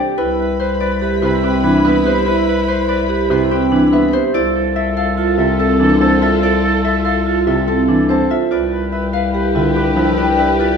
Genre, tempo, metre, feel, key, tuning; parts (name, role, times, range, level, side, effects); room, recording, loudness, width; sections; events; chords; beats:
classical, minimalist pattern music; 144 BPM; 5/4; straight; C major; A4 = 441 Hz
Celtic harp; melody; 0.0-10.8 s; G4 to A5; -20 LUFS; left 4 dB
warm concert grand piano; accompaniment; 0.0-10.4 s; C3 to D4; -21 LUFS; equal
vibraphone with medium hard mallets; arpeggios; 0.0-10.8 s; C4 to D5; -17 LUFS; right 4 dB
dark bass clarinet; bass; 0.0-10.8 s; C2; -19 LUFS; left 2 dB
warm oboe; second line; 0.2-10.7 s; A4 to B4; -23 LUFS; right 3 dB
warm symphonic violin section; sustained chords; 0.2-10.8 s; E4 to B5; -25 LUFS; left 3 dB
wet recital hall reverb, RT60 1.4 s; dark, warm production; -13 LUFS; side -6 dB against mid
0.0-10.8 A section
0.2 Cmaj9; 4.3 Fmaj7/C; 8.5 G7/C
| 0.17 0.59 1.01 1.43 1.84 | 2.26 2.67 3.09 3.51 3.92 | 4.34 4.76 5.17 5.59 6.01 | 6.42 6.84 7.26 7.67 8.09 | 8.51 8.93 9.34 9.76 10.18 | 10.59